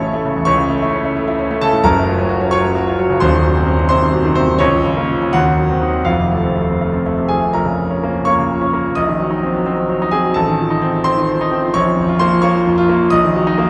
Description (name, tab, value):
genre	classical, virtuoso piano study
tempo	86 BPM (dotted quarters)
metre	6/8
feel	rubato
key	Bb minor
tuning	A4 = 439 Hz
part	warm grand piano	solo	0.0-13.7 s	Eb1 to Eb6	-16 LUFS	equal	none
room	wet cathedral reverb, RT60 6.2 s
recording	recorded in a church or concert hall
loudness	-16 LUFS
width	mono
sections	0.0-7.5 A section; 7.5-13.7 B section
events	none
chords	0.5 A/C#; 1.8 Gbmaj7; 3.2 Cdim/Eb; 4.6 Bbm/Db; 5.3 Cdim/Eb; 6.1 F; 7.5 Bbm; 9.0 Cm7b5/Bb; 10.4 F7/A; 11.8 Bbm; 13.1 Ebm/Bb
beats	| 0.47 1.16 | 1.84 2.53 | 3.22 3.91 | 4.60 5.34 | 6.08 6.81 | 7.55 8.26 | 8.97 9.66 | 10.36 11.05 | 11.75 12.44 | 13.13